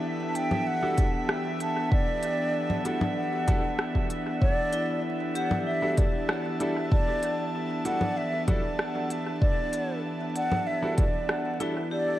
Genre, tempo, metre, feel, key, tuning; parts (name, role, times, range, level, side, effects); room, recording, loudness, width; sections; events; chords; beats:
ambient dub; 96 BPM; 4/4; straight; E minor; A4 = 442 Hz
airy breathy pad; sustained chords; 0.0-12.2 s; E3 to A5; -32 LUFS; equal; chorus
vibraphone with hard mallets; arpeggios; 0.0-12.2 s; E4 to A5; -38 LUFS; left 2 dB; dub echo
drifting glass-harmonics texture; texture; 0.0-12.2 s; E5; -40 LUFS; right 3 dB; chorus, built-in reverb
mellow hollow concert flute; melody; 0.3-12.2 s; D5 to A5; -30 LUFS; equal; dub echo
organic electronic drum kit; drums; 0.4-11.7 s; congas, hi-hat, rim click; -33 LUFS; left 1 dB; dub echo
clear upright piano; stabs; 0.8-11.7 s; G3 to A4; -36 LUFS; equal; dub echo
electronic kick drum; drums; 1.0-11.1 s; -24 LUFS; equal
light reverb, digital ambience; vinyl crackle; -25 LUFS; side -14 dB against mid
0.0-12.2 A section
kick drops out 11.9
0.0 Em11
0.04 0.67 1.29 | 1.92 2.54 3.17 3.79 | 4.42 5.04 5.67 6.29 | 6.92 7.54 8.17 8.79 | 9.42 10.04 10.67 11.29 | 11.92